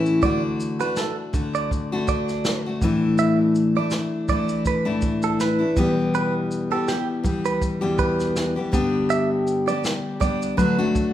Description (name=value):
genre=acoustic pop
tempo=81 BPM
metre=4/4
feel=swing 55% on 16ths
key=D major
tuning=A4 = 440 Hz
part: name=picked steel-string acoustic guitar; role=accompaniment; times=0.0-11.1 s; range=E2 to G4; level=-21 LUFS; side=left 2 dB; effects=none
part: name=direct-recorded clean electric guitar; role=arpeggios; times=0.0-10.8 s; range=G4 to E5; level=-26 LUFS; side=right 5 dB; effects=none
part: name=vintage brush drum kit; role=drums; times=0.1-11.1 s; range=kick drum, shaker, snare drum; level=-27 LUFS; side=right 1 dB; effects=none
room=wet recital hall reverb, RT60 1.3 s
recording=recorded in a church or concert hall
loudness=-20 LUFS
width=side -12 dB against mid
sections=0.2-11.1 A section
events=none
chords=0.2 D; 2.8 Asus4; 5.8 Em; 8.7 G; 10.6 D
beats=| 0.23 0.97 1.71 2.45 | 3.19 3.92 4.66 5.40 | 6.14 6.88 7.62 8.36 | 9.10 9.84 10.58